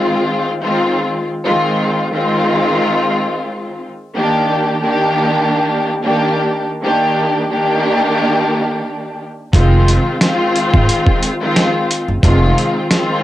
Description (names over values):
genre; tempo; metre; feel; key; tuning
hip hop, boom-bap hip-hop; 89 BPM; 4/4; swing 56% on 16ths; F dorian; A4 = 441 Hz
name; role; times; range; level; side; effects
warm studio string section; accompaniment; 0.0-13.2 s; Eb3 to G4; -14 LUFS; equal; high-pass filter, low-pass filter, cassette tape
upright bass; bass; 9.5-12.5 s; F1 to Ab1; -13 LUFS; right 1 dB; none
dusty soul sampler-style drum kit; drums; 9.5-13.1 s; hi-hat, kick drum, snare drum; -14 LUFS; right 1 dB; overdrive, vintage 12-bit sampler grit, cassette tape
room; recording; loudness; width
light reverb; home recording on cassette; -13 LUFS; side -14 dB against mid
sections
0.0-13.2 A section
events
none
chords
0.0 Fm7; 4.1 Ebmaj7; 9.5 Fm7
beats
0.10 0.77 | 1.45 2.12 2.79 3.47 | 4.14 4.82 5.49 6.17 | 6.84 7.51 8.19 8.86 | 9.54 10.21 10.88 11.56 | 12.23 12.91